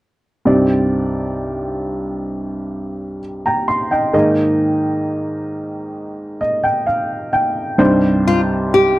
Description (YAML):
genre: pop ballad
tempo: 65 BPM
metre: 4/4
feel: straight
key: C minor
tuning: A4 = 437 Hz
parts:
  - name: warm upright piano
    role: accompaniment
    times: 0.5-9.0 s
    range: C2 to C6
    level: -16 LUFS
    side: equal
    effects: none
  - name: nylon-string guitar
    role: melody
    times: 8.3-9.0 s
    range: F4 to G4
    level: -12 LUFS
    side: left 1 dB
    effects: none
room: light reverb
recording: dry, close 1970s-style studio recording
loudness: -15 LUFS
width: side -17 dB against mid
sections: 0.5-7.8 A section; 7.8-9.0 B section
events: upright piano fill 6.0-7.8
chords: 0.5 Cmadd9; 4.1 Absus2; 7.8 Cmadd9